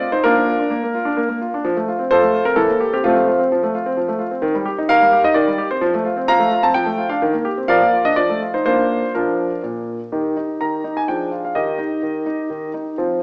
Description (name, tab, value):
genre	classical-period piano sonatina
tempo	128 BPM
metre	3/4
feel	straight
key	Bb major, Eb major from 10.1 s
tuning	A4 = 440 Hz
part	clear grand piano	solo	0.0-13.2 s	Bb2 to Bb5	-15 LUFS	equal	none
room	wet recital hall reverb, RT60 1.5 s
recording	small speaker sound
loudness	-15 LUFS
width	side -32 dB against mid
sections	0.0-10.1 A section; 10.1-13.2 B section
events	none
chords	0.2 Bb; 1.6 F; 2.6 C7/E; 3.0 F; 4.4 Eb; 5.4 Cm/Eb; 5.8 F; 6.8 Dm/F; 7.2 Cm7/Eb; 7.7 Bb/F; 8.2 F7; 8.7 Bb; 10.1 Eb; 11.1 Ddim/F; 11.5 Eb